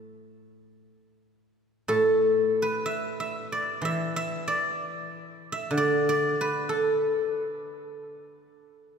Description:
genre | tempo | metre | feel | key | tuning
chinese traditional, Chinese solo plucked strings | 54-67 BPM | 4/4 | rubato | unclear | A4 = 440 Hz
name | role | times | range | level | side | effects
guzheng | solo | 0.0-8.9 s | A2 to A5 | -25 LUFS | equal | none
room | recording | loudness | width
wet church reverb, RT60 3.5 s | recorded in a church or concert hall | -24 LUFS | side -6 dB against mid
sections
0.0-1.9 A section; 1.9-9.0 B section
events
none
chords
none

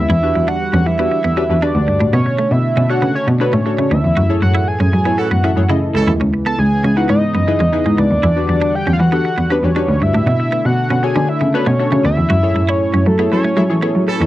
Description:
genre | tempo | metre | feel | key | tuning
funk | 118 BPM | 4/4 | straight | unclear | A4 = 440 Hz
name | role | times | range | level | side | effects
fat analog lead | melody | 0.0-14.0 s | A4 to A5 | -19 LUFS | equal | chorus, slapback echo
chorused pulse-width pad | sustained chords | 0.0-14.3 s | A2 to F#5 | -24 LUFS | right 1 dB | none
warm cello | bass | 0.0-14.3 s | C#2 to F#3 | -15 LUFS | equal | none
clean electric guitar | riff | 0.1-14.3 s | G#3 to F#4 | -23 LUFS | right 4 dB | analog chorus
funky polysynth comp | accompaniment | 0.2-14.3 s | D4 to E5 | -20 LUFS | left 3 dB | chorus
warm horn section | second line | 5.2-6.1, 13.3-14.2 s | E3 to A4 | -20 LUFS | right 4 dB | none
room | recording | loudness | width
little or no reverb | dry, close 1970s-style studio recording | -13 LUFS | side -15 dB against mid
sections
0.0-14.3 A section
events
band accent 4.2-6.2, 12.3-14.3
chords
0.1 Em9; 2.1 Bm9; 4.2 F#m9; 6.2 C#m9; 8.2 Em9; 10.3 Bm9; 12.3 F#m9

